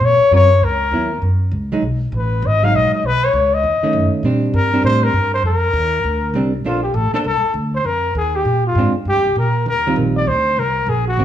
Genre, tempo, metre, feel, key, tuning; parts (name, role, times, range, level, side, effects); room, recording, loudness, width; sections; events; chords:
jazz, small-group swing and bop; 199 BPM; 4/4; swing 61% on 8ths; Bb major; A4 = 443 Hz
breathy trumpet; melody; 0.0-11.2 s; F4 to F5; -16 LUFS; left 2 dB; plate reverb
upright bass; bass; 0.0-11.2 s; G#1 to Bb2; -18 LUFS; equal
hollow-body jazz guitar; accompaniment; 0.3-11.2 s; D3 to C5; -20 LUFS; right 3 dB
moderate large studio reverb, RT60 1.1 s; small room ambience; -14 LUFS; side -10 dB against mid
0.0-6.7 A section; 6.7-11.2 B section
0.0 Gbmaj7#11; 0.6 Dbm11; 1.2 Gbsus2; 1.8 B6; 3.0 B9; 4.2 Bb69; 6.7 Bbmaj9; 7.9 Ebsus2; 8.5 Bb9; 9.1 Eb69; 10.3 D7(#5, no3)